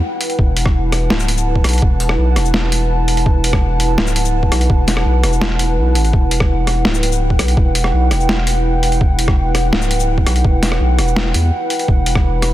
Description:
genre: half-time drum and bass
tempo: 167 BPM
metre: 4/4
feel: half-time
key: E minor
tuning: A4 = 437 Hz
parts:
  - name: dark analog pad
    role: sustained chords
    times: 0.0-12.5 s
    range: E4 to B5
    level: -20 LUFS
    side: right 1 dB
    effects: chorus, vintage 12-bit sampler grit, sidechain pumping
  - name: boom bap sampler-style drum kit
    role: drums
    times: 0.2-12.5 s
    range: hi-hat, rim click, shaker, snare drum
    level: -20 LUFS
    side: equal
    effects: overdrive
  - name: saturated sub bass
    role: bass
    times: 0.4-12.5 s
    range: D1 to E2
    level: -16 LUFS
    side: equal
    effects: none
  - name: electronic kick drum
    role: drums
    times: 0.4-12.2 s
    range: none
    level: -14 LUFS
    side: equal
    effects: overdrive
room: light reverb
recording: dense, heavily limited modern master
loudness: -13 LUFS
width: side -14 dB against mid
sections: 0.0-12.5 A section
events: none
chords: 0.0 Emadd9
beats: 0.03 | 0.39 0.74 1.10 1.46 | 1.82 2.18 2.54 2.90 | 3.26 3.62 3.98 4.34 | 4.70 5.06 5.42 5.78 | 6.13 6.49 6.85 7.21 | 7.57 7.93 8.29 8.65 | 9.01 9.37 9.73 10.09 | 10.45 10.80 11.16 11.52 | 11.88 12.24

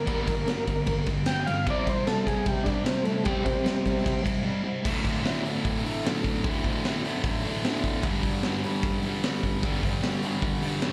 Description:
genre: garage rock duo or trio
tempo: 151 BPM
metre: 4/4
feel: straight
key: unclear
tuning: A4 = 440 Hz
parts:
  - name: overdriven combo organ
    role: melody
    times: 0.0-4.2 s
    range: G3 to G5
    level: -31 LUFS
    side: equal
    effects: none
  - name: fuzz guitar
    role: riff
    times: 0.0-10.9 s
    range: D2 to C4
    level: -31 LUFS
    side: equal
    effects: distortion, slapback echo
  - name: raw garage drum kit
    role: drums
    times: 0.1-10.9 s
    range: crash cymbal, hi-hat, kick drum, ride cymbal, snare drum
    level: -31 LUFS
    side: equal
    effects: none
room: light reverb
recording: live gig heard through the venue's PA, club reverb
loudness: -27 LUFS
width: mono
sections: 0.0-4.9 A section; 4.9-10.9 B section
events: transistor combo organ solo 0.0-4.9; break 4.5-4.9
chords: 0.0 G5; 1.7 C5; 4.9 D5; 8.0 G5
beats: | 0.09 0.48 0.88 1.28 | 1.68 2.07 2.47 2.87 | 3.27 3.66 4.06 4.46 | 4.85 5.25 5.65 6.05 | 6.44 6.84 7.24 7.64 | 8.04 8.43 8.83 9.23 | 9.63 10.03 10.43 10.82

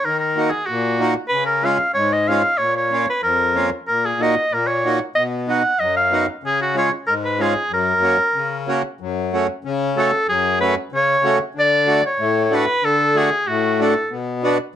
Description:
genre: alpine folk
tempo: 94 BPM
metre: 2/4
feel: straight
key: F# major, F# minor from 9.0 s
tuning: A4 = 439 Hz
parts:
  - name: clear oboe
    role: melody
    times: 0.0-14.1 s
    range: F#4 to F#5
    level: -18 LUFS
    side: equal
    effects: none
  - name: accordion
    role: accompaniment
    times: 0.1-14.6 s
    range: E#2 to F#4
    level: -20 LUFS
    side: left 1 dB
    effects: none
room: moderate small room reverb, RT60 0.5 s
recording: dark, warm production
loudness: -16 LUFS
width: side -10 dB against mid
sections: 0.0-9.0 A section; 9.0-14.8 B section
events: none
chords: 0.0 D#m; 1.3 C#; 2.6 A#m; 3.9 D#m/A#; 5.2 B; 6.4 C#; 7.7 F#; 9.0 F#m; 11.6 D; 14.1 Bm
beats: | 0.04 0.68 | 1.31 1.95 | 2.59 3.23 | 3.88 4.52 | 5.16 5.80 | 6.44 7.07 | 7.71 8.35 | 9.00 9.64 | 10.28 10.92 | 11.55 12.19 | 12.83 13.47 | 14.11

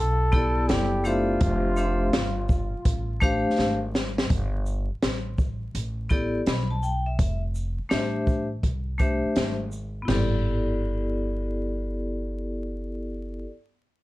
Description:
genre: hip hop, jazz-hop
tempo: 83 BPM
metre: 4/4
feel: swing 65% on 16ths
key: G mixolydian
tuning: A4 = 440 Hz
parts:
  - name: breathy flugelhorn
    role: melody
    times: 0.0-3.2 s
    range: F4 to A4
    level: -29 LUFS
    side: right 1 dB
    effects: tape echo
  - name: upright bass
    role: bass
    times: 0.0-13.4 s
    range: F1 to C2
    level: -29 LUFS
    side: equal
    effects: none
  - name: vibraphone with hard mallets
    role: accompaniment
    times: 0.3-13.5 s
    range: A3 to B5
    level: -27 LUFS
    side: left 1 dB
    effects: low-pass filter
  - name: open jazz drum kit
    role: drums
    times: 0.3-10.3 s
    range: crash cymbal, hi-hat, kick drum, shaker, snare drum, toms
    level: -26 LUFS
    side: equal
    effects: vintage 12-bit sampler grit
room: light reverb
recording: dark, warm production, vinyl crackle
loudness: -23 LUFS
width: side -18 dB against mid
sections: 0.0-4.3 A section; 4.3-10.1 B section; 10.1-13.0 C section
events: drum fill 3.6-4.3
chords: 0.0 G69; 1.4 F69; 4.3 G69; 7.2 F69; 10.1 G69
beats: 0.69 | 1.41 2.13 2.86 3.58 | 4.30 5.03 5.75 6.47 | 7.19 7.92 8.64 9.36 | 10.09 10.81 11.53 12.25

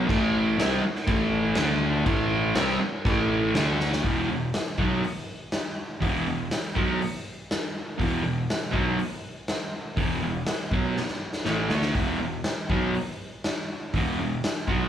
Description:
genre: garage rock duo or trio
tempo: 121 BPM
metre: 4/4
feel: straight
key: unclear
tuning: A4 = 440 Hz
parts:
  - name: fuzz guitar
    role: riff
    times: 0.0-14.9 s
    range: E2 to D4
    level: -25 LUFS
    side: equal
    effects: distortion
  - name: fuzz picked electric bass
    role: bass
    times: 0.0-14.9 s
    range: E1 to D2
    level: -34 LUFS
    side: equal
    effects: overdrive
  - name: raw garage drum kit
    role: drums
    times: 0.1-14.8 s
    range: crash cymbal, hi-hat, kick drum, snare drum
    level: -28 LUFS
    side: equal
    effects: none
room: light reverb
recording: band playing live in one room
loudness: -24 LUFS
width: side -10 dB against mid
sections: 0.0-4.0 A section; 4.0-14.9 B section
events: drum fill 3.8, 11.0-12.0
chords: 0.1 A5; 1.6 D5; 2.1 A5; 3.5 D5; 4.0 E5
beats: | 0.09 0.58 1.07 1.57 | 2.06 2.55 3.05 3.54 | 4.04 4.53 5.03 5.52 | 6.01 6.51 7.00 7.50 | 8.00 8.49 8.99 9.48 | 9.98 10.47 10.96 11.46 | 11.95 12.45 12.94 13.43 | 13.93 14.42

